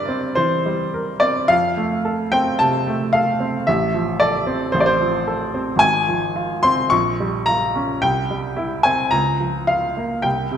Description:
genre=classical, romantic character piece for solo piano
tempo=110 BPM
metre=4/4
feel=uneven beats, rubato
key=F major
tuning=A4 = 440 Hz
part: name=clear baby grand piano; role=solo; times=0.0-10.6 s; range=Ab1 to Db6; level=-17 LUFS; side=equal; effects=none
room=wet scoring stage reverb, RT60 1.6 s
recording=none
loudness=-17 LUFS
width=side -8 dB against mid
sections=0.0-10.6 A section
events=none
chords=0.0 C7/G; 1.5 F; 3.7 F/A; 5.8 Fm/Ab; 6.9 Gm7b5/Bb; 8.0 C; 9.1 Bbm/Db

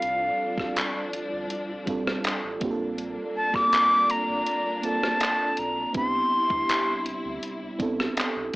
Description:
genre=contemporary R&B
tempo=81 BPM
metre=4/4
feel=straight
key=unclear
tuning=A4 = 440 Hz
part: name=breathy bright concert flute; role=melody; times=0.0-7.0 s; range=F5 to D6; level=-23 LUFS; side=equal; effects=analog delay
part: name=FM electric piano with soft pad layer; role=accompaniment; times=0.0-8.6 s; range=G3 to A4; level=-31 LUFS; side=right 2 dB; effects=chorus, cassette tape
part: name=warm symphonic string section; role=sustained chords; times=0.0-8.6 s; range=C3 to E4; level=-35 LUFS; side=left 1 dB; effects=cassette tape
part: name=sub bass with octave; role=bass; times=0.0-8.5 s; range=G1 to D2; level=-48 LUFS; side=equal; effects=none
part: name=gated 80s digital drum machine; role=drums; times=0.0-8.6 s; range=handclaps, hi-hat, kick drum, rim click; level=-29 LUFS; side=equal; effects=gated reverb, overdrive, cassette tape
room=light reverb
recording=home recording on cassette, AM radio sound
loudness=-23 LUFS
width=side -21 dB against mid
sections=0.0-8.6 A section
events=none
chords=0.0 F69; 2.6 Bbmaj7; 6.0 Cmaj7

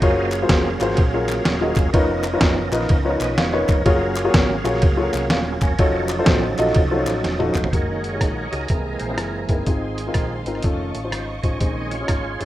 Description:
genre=uptempo gospel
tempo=124 BPM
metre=4/4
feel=swing 64% on 8ths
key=unclear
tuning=A4 = 440 Hz
part: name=warm concert grand piano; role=accompaniment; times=0.0-12.4 s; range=Ab2 to Ab5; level=-22 LUFS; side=left 2 dB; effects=none
part: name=overdriven tonewheel organ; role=sustained chords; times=0.0-12.4 s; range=Eb3 to F5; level=-26 LUFS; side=right 3 dB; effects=fast rotary speaker, chorus vibrato
part: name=hollow-body short-scale fingered electric bass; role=bass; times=0.0-12.4 s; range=Eb1 to Db2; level=-28 LUFS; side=equal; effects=none
part: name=trip hop sampler-style drum kit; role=drums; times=0.0-12.4 s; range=hi-hat, kick drum, ride cymbal, rim click, snare drum, toms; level=-20 LUFS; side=equal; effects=none
part: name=group handclap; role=percussion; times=0.3-7.6 s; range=none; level=-33 LUFS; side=left 3 dB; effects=none
part: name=warm studio string section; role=sustained chords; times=7.7-12.4 s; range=C5 to Db6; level=-35 LUFS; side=equal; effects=none
room=light reverb, digital ambience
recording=rough home demo mix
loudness=-18 LUFS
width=side -14 dB against mid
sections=0.0-7.7 A section; 7.7-12.4 B section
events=grand piano fill 3.1-3.9; tonewheel organ fill 3.1-3.9; drum fill 7.2-7.7; tonewheel organ solo 7.7-12.4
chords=0.0 Gbmaj9; 1.9 Db13/F; 3.9 Gbmaj9; 5.8 F7b9b13; 7.7 Gb69; 8.7 C7alt; 9.7 Fm7/Ab; 10.6 F7b13; 11.6 Bbm11

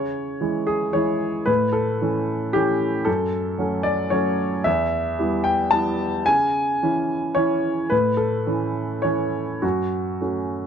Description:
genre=neoclassical minimalist piano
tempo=112 BPM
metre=3/4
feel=rubato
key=unclear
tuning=A4 = 443 Hz
part: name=warm upright piano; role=solo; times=0.0-10.7 s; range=E2 to A5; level=-20 LUFS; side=equal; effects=none
room=light reverb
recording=none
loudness=-20 LUFS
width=side -7 dB against mid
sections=0.0-10.7 A section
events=none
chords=0.0 C#m; 1.5 A; 3.1 F#m; 4.7 Em; 6.3 C#m; 7.9 A; 9.6 F#m

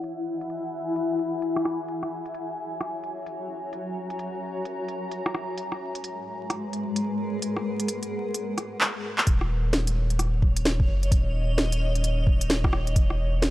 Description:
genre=future garage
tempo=130 BPM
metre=4/4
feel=swing 62% on 16ths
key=Eb phrygian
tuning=A4 = 441 Hz
part: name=granular cloud pad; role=sustained chords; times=0.0-13.5 s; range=Ab3 to B5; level=-30 LUFS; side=left 1 dB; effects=built-in reverb, sidechain pumping
part: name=organic electronic drum kit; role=drums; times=0.0-13.5 s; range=handclaps, hi-hat, rim click, snare drum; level=-27 LUFS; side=equal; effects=overdrive
part: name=warm sub bass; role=bass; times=9.3-13.5 s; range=Eb1 to Gb1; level=-25 LUFS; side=equal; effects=transformer saturation, sidechain pumping
part: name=electronic kick drum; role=drums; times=9.3-13.1 s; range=none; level=-22 LUFS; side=equal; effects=overdrive
room=light reverb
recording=dry, gritty hardware recording, transformer saturation, vinyl crackle, low-pass filter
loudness=-24 LUFS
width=side -16 dB against mid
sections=0.0-9.3 A section; 9.3-13.5 B section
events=filter sweep on ambient pad 0.0-9.3; filter sweep 0.0-9.3; drum fill 8.8-9.3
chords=0.0 Eadd9; 1.9 Gb7; 5.6 Abm7; 9.3 Eb7(no3); 13.0 E

